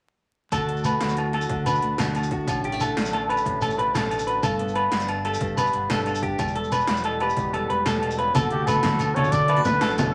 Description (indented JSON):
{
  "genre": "highlife guitar band",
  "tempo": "123 BPM (dotted quarters)",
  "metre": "12/8",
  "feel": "straight",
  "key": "D major",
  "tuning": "A4 = 440 Hz",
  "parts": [
    { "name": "picked old ladder-braced acoustic guitar", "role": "accompaniment", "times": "0.5-10.1 s", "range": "E2 to G4", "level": "-33 LUFS", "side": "equal", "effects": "none" },
    { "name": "clean electric guitar", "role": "arpeggios", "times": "0.5-10.1 s", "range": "F#4 to B4", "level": "-28 LUFS", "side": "equal", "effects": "none" },
    { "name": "fingered electric bass", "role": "bass", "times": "0.5-10.1 s", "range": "E1 to D3", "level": "-33 LUFS", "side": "equal", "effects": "none" },
    { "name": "80s electronic pad drums", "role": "drums", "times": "0.5-10.1 s", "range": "hi-hat, kick drum, snare drum", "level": "-33 LUFS", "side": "equal", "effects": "none" },
    { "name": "agogo bells", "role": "percussion", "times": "0.5-10.1 s", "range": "none", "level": "-33 LUFS", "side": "equal", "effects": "none" },
    { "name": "shekere", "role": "percussion", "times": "0.5-10.1 s", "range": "none", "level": "-35 LUFS", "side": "equal", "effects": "none" },
    { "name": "congas", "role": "percussion", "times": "8.4-10.1 s", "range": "none", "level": "-29 LUFS", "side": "equal", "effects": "none" },
    { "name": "breathy trumpet", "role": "melody", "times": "8.5-10.1 s", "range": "G4 to D5", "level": "-26 LUFS", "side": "equal", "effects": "none" }
  ],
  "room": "wet studio reverb, RT60 0.8 s",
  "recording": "vinyl crackle",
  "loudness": "-24 LUFS",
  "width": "mono",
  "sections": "0.5-8.3 A section; 8.3-10.1 B section",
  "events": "none",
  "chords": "0.5 D; 2.5 Asus4; 4.4 G; 6.4 Em; 8.3 D",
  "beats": "| 0.52 1.01 1.50 1.99 | 2.48 2.97 3.46 3.95 | 4.44 4.93 5.42 5.91 | 6.39 6.88 7.37 7.86 | 8.35 8.84 9.33 9.81"
}